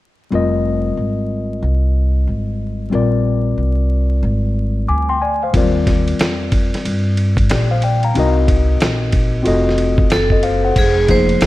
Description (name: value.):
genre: hip hop, jazz-hop.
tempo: 92 BPM.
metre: 4/4.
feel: swing 63% on 16ths.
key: F minor.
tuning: A4 = 440 Hz.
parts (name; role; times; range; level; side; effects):
mellow tine electric piano; accompaniment; 0.3-11.5 s; F3 to D6; -19 LUFS; left 3 dB; auto-pan.
upright bass; bass; 0.3-11.5 s; F1 to G2; -17 LUFS; equal; none.
dusty soul sampler-style drum kit; drums; 5.5-11.5 s; crash cymbal, hi-hat, kick drum, ride cymbal, snare drum; -17 LUFS; equal; none.
vibraphone with hard mallets; melody; 10.1-11.5 s; Ab4 to C5; -16 LUFS; right 2 dB; none.
room: light reverb.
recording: dark, warm production, vinyl crackle.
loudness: -14 LUFS.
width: side -16 dB against mid.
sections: 0.3-10.8 A section.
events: none.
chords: 0.3 Fm9; 2.9 Bb13; 5.5 Ebmaj9; 8.1 Cm7b5; 9.5 F7b9; 10.8 Fm7.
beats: | 0.32 0.98 1.63 2.28 | 2.93 3.58 4.24 4.89 | 5.54 6.19 6.84 7.50 | 8.15 8.80 9.45 10.11 | 10.76 11.41.